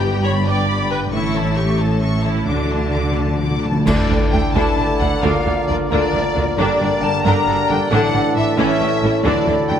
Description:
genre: cinematic, heroic adventure film score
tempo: 89 BPM (dotted quarters)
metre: 6/8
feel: straight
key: D major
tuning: A4 = 439 Hz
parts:
  - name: warm symphonic violin section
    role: melody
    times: 0.0-9.8 s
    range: D5 to D6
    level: -25 LUFS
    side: left 4 dB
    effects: none
  - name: rich symphonic violin section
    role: second line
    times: 0.0-9.8 s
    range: D4 to A5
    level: -29 LUFS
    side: left 4 dB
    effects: none
  - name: rich symphonic viola section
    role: accompaniment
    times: 0.0-9.8 s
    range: D3 to D5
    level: -24 LUFS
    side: right 1 dB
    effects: none
  - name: mellow French horn section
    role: sustained chords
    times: 0.0-9.8 s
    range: A3 to F#4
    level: -27 LUFS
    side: left 2 dB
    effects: none
  - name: concert harp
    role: arpeggios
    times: 0.0-9.8 s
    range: G2 to B4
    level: -26 LUFS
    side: left 6 dB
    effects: none
  - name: rich symphonic cello section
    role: bass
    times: 0.0-9.8 s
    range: D2 to D3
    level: -23 LUFS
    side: right 2 dB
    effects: none
  - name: warm symphonic double bass section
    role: bass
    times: 0.0-9.8 s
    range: G1 to D2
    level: -23 LUFS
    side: right 3 dB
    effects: none
  - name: timpani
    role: percussion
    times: 2.5-3.8, 9.2-9.8 s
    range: D3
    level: -24 LUFS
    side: equal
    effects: none
  - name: clear clarinet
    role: second line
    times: 3.9-9.8 s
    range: C#4 to F4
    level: -28 LUFS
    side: equal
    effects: none
  - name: dark cor anglais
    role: second line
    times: 3.9-9.8 s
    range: A4 to Bb4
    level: -26 LUFS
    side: right 2 dB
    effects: none
  - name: hollow concert flute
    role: second line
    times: 3.9-9.8 s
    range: D5 to Bb5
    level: -25 LUFS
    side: left 2 dB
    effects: none
  - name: clear trombone section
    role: sustained chords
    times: 3.9-9.8 s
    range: A2 to G3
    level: -28 LUFS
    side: right 4 dB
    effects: none
  - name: mellow trumpet section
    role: stabs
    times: 3.9-9.8 s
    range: C#5 to D5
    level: -25 LUFS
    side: right 3 dB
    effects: none
  - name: clash cymbals and concert bass drum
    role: percussion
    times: 3.9-4.7 s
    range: none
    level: -24 LUFS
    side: equal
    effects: none
room: wet scoring stage reverb, RT60 1.7 s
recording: none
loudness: -15 LUFS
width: side -8 dB against mid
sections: 0.0-3.9 A section; 3.9-9.8 A section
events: timpani fill 2.5-3.9; band accent 3.9-4.3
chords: 0.0 G; 1.1 A; 2.5 D; 3.9 Dsus2; 5.2 Bb/D; 6.6 Gm; 7.9 Asus4; 8.6 A; 9.2 Dadd9

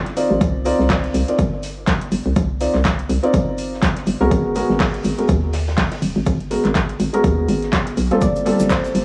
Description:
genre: deep house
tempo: 123 BPM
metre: 4/4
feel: swing 57% on 16ths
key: unclear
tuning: A4 = 438 Hz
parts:
  - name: felt-muted upright piano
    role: stabs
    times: 0.0-9.0 s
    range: D3 to D5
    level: -23 LUFS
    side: equal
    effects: sidechain pumping, tape echo
  - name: deep house drum kit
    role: drums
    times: 0.1-9.0 s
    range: handclaps, hi-hat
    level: -28 LUFS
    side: equal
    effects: overdrive, studio ambience
  - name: open jazz drum kit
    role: drums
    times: 0.1-9.0 s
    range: hi-hat, shaker, snare drum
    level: -38 LUFS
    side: equal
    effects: high-pass filter on hats, studio ambience, high-pass filter on snare, high-pass filter on perc, high-pass filter on room
  - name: hollow knocking FM bass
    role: bass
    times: 0.3-9.0 s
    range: Eb1 to Eb2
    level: -24 LUFS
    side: equal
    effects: sidechain pumping
  - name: electronic kick drum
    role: drums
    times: 0.4-8.8 s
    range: none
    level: -24 LUFS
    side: equal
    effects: overdrive, studio ambience
  - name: soft round pluck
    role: melody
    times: 8.2-9.0 s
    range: C5 to D5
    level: -26 LUFS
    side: equal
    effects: chorus
  - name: maracas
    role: percussion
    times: 8.2-8.9 s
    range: none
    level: -39 LUFS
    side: equal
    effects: none
room: small room ambience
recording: dry, gritty hardware recording, transformer saturation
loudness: -19 LUFS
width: mono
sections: 0.0-9.0 A section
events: none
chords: 0.4 Cm11; 4.3 Abm11; 8.2 Gm11

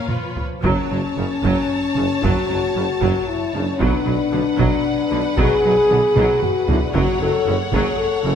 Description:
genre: cinematic, epic orchestral film score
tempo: 115 BPM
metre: 3/4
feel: straight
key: F# minor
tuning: A4 = 442 Hz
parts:
  - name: clear symphonic violin section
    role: melody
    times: 0.0-8.3 s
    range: Db5 to A5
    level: -30 LUFS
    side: left 4 dB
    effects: none
  - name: rich studio violin section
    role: second line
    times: 0.0-8.3 s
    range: Cb5 to C#5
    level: -30 LUFS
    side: left 2 dB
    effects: none
  - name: rich symphonic viola section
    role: accompaniment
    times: 0.0-8.3 s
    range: C#3 to F4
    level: -26 LUFS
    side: right 2 dB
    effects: none
  - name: mellow French horn section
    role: sustained chords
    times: 0.0-8.3 s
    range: F3 to A4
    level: -20 LUFS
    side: left 3 dB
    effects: none
  - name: taiko ensemble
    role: drums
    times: 0.1-8.2 s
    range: none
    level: -25 LUFS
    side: equal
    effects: none
  - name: clear tuba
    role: bass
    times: 0.6-8.3 s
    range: F#1 to B1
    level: -28 LUFS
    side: right 4 dB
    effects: none
  - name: rich symphonic cello section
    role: bass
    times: 0.6-8.3 s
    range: F#2 to B2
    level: -26 LUFS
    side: right 3 dB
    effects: none
  - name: rich symphonic double bass section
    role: bass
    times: 0.6-8.3 s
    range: F#1 to B1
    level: -26 LUFS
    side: right 4 dB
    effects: none
room: moderate concert hall reverb, RT60 2.2 s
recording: none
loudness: -16 LUFS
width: side -8 dB against mid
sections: 0.6-8.3 A section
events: drum fill 0.0-0.6, 6.2-6.9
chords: 0.1 Db7/F; 0.6 F#m; 3.8 Bm; 6.9 F#m

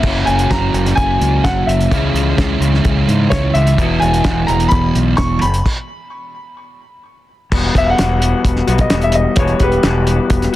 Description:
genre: indie rock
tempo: 128 BPM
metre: 4/4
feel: straight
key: unclear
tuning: A4 = 438 Hz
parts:
  - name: dark upright piano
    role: melody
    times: 0.0-10.5 s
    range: G4 to C#6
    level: -19 LUFS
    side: left 1 dB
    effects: tape echo
  - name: electric guitar through a small old amp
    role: riff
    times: 0.0-10.6 s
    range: F#2 to F#4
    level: -20 LUFS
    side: left 5 dB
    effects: none
  - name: sludgy distorted guitar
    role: riff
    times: 0.0-5.4 s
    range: E2 to F#4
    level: -18 LUFS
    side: right 5 dB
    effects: overdrive, analog chorus
  - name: growling fingered electric bass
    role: bass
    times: 0.0-10.5 s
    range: E1 to G#2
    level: -17 LUFS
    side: equal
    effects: overdrive
  - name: cloth-damped thuddy drum kit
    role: drums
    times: 0.0-10.5 s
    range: crash cymbal, hi-hat, kick drum, snare drum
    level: -18 LUFS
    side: equal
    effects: none
room: light reverb, small room reverb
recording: dense, heavily limited modern master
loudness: -12 LUFS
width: side -15 dB against mid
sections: 0.0-7.5 A section; 7.5-10.6 B section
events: stop 5.7-7.5; upright piano solo 7.5-10.6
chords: 0.0 F#7; 1.9 C#m; 3.8 Esus2; 5.4 F#sus4; 7.5 Emadd9

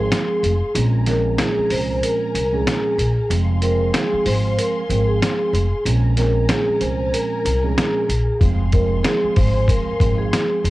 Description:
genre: hip hop, boom-bap hip-hop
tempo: 94 BPM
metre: 4/4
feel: swing 60% on 16ths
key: F minor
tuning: A4 = 440 Hz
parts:
  - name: vibraphone with soft mallets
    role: melody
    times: 0.0-10.7 s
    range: Ab4 to C5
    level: -21 LUFS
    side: equal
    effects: high-pass filter, low-pass filter
  - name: mellow tine electric piano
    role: accompaniment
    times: 0.0-10.7 s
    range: Bb2 to Db4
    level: -26 LUFS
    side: right 7 dB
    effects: medium stereo tremolo, high-pass filter, low-pass filter
  - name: dark studio string section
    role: sustained chords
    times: 0.0-10.7 s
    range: Ab4 to C6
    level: -32 LUFS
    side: left 2 dB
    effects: high-pass filter, low-pass filter
  - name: upright bass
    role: bass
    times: 0.0-10.7 s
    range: F1 to C2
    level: -20 LUFS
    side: equal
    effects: none
  - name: trip hop sampler-style drum kit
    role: drums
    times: 0.1-10.7 s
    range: hi-hat, kick drum, snare drum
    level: -21 LUFS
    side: equal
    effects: none
room: light reverb, small room ambience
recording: home recording on cassette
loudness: -16 LUFS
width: side -17 dB against mid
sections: 0.0-10.7 A section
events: break 0.0-8.4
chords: 0.0 Fm; 0.7 Bbm7; 3.3 Fm; 5.9 Bbm7; 8.4 Fm

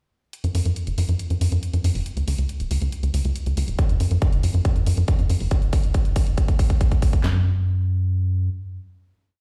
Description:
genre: uplifting trance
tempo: 139 BPM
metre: 4/4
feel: straight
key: unclear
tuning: A4 = 440 Hz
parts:
  - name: electronic hi-hat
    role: drums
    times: 0.3-7.2 s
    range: none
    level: -40 LUFS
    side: equal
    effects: none
  - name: tight sequencer bass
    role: bass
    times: 0.4-8.5 s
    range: D1 to F#2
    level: -23 LUFS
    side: equal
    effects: sidechain pumping
  - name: big-room dance drum kit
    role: drums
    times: 3.8-7.3 s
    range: handclaps, kick drum, snare drum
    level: -21 LUFS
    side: equal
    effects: none
room: little or no reverb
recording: played on a big sound system in a bare room, stone room reverb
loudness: -22 LUFS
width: mono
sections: 0.3-7.2 build; 7.2-9.4 final note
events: build-up 0.3-7.2; drum fill 3.8-7.2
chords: none

